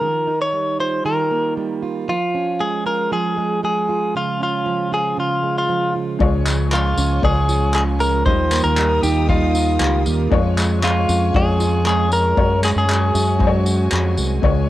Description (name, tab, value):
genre	acoustic pop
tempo	117 BPM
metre	4/4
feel	straight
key	Db major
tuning	A4 = 444 Hz
part	direct-recorded clean electric guitar	melody	0.0-13.5 s	F4 to Db5	-20 LUFS	left 1 dB	none
part	fingerpicked plugged-in steel-string acoustic guitar	accompaniment	0.0-14.7 s	Db3 to Gb4	-23 LUFS	right 6 dB	cassette tape
part	warm upright piano	accompaniment	6.2-14.7 s	G3 to Eb5	-25 LUFS	left 6 dB	cassette tape
part	warm studio string section	sustained chords	6.2-14.7 s	F4 to Eb6	-32 LUFS	left 2 dB	cassette tape
part	fingered electric bass with an envelope filter	bass	6.2-14.7 s	C2 to Gb2	-19 LUFS	left 1 dB	none
part	vintage brush drum kit	drums	6.2-14.6 s	handclaps, kick drum, tambourine	-22 LUFS	left 1 dB	cassette tape
room	moderate spring reverb, RT60 1.6 s, small room ambience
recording	home recording on cassette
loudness	-16 LUFS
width	side -14 dB against mid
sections	0.0-6.2 A section; 6.2-14.7 B section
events	none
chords	0.0 Ebadd9; 2.1 Db/F; 4.1 Db; 8.3 Ebadd9; 10.3 Db/F; 12.4 Gbsus2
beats	| 0.01 0.53 1.04 1.56 | 2.08 2.59 3.11 3.62 | 4.14 4.66 5.17 5.69 | 6.20 6.72 7.23 7.75 | 8.26 8.78 9.29 9.80 | 10.32 10.83 11.35 11.86 | 12.37 12.89 13.40 13.92 | 14.43